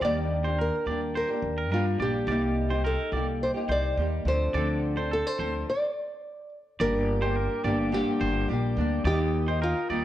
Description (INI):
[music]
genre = pop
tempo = 106 BPM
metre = 4/4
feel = straight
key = G minor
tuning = A4 = 442 Hz
[part]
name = nylon-string guitar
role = melody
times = 0.0-10.0 s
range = F4 to D5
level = -30 LUFS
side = equal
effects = slapback echo
[part]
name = nylon-string guitar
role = accompaniment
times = 0.0-10.0 s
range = G2 to A4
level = -30 LUFS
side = left 1 dB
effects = double-tracked left and right
[part]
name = twangy electric guitar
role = arpeggios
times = 0.0-10.0 s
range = A4 to D5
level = -35 LUFS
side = right 3 dB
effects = slapback echo
[part]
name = upright bass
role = bass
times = 0.0-10.0 s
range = G1 to G2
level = -29 LUFS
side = equal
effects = none
[part]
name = mellow tonewheel organ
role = sustained chords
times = 6.8-10.0 s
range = Bb4 to Eb6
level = -40 LUFS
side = equal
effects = slow rotary speaker
[sound]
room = moderate echo chamber reverb, RT60 1.3 s, small room reverb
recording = worn, warbling old tape, cassette tape, warbly pitch drift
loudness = -24 LUFS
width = side -12 dB against mid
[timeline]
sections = 0.0-6.8 A section; 6.8-10.0 B section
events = stop 5.7-6.8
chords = 0.0 Ebmaj7; 2.3 Cm7; 4.3 Dm7; 6.8 Gm; 9.1 Eb